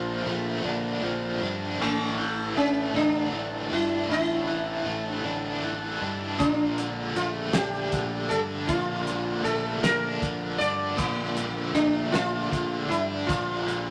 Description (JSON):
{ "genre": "psychedelic rock", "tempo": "52 BPM (dotted quarters)", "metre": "6/8", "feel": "straight", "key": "unclear", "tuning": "A4 = 439 Hz", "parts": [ { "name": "sitar", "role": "melody", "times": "0.0-13.9 s", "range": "A3 to D5", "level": "-30 LUFS", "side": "equal", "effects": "none" }, { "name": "combo organ", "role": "sustained chords", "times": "0.0-13.9 s", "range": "F3 to Bb5", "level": "-42 LUFS", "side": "equal", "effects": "none" }, { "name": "biting overdriven guitar", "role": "riff", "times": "0.0-13.9 s", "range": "A2 to D4", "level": "-33 LUFS", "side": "equal", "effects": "tremolo" }, { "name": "fuzz fingered electric bass", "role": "bass", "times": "0.0-13.9 s", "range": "A1 to G2", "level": "-36 LUFS", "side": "equal", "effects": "overdrive" }, { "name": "damped 70s drum kit", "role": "drums", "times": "6.4-13.9 s", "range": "hi-hat, kick drum, snare drum", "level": "-32 LUFS", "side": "equal", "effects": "none" } ], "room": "wet studio reverb, RT60 0.8 s", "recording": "none", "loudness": "-27 LUFS", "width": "mono", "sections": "0.0-13.9 A section", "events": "none", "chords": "0.0 Bbmaj7; 1.8 Asus4; 6.4 Bbmaj7" }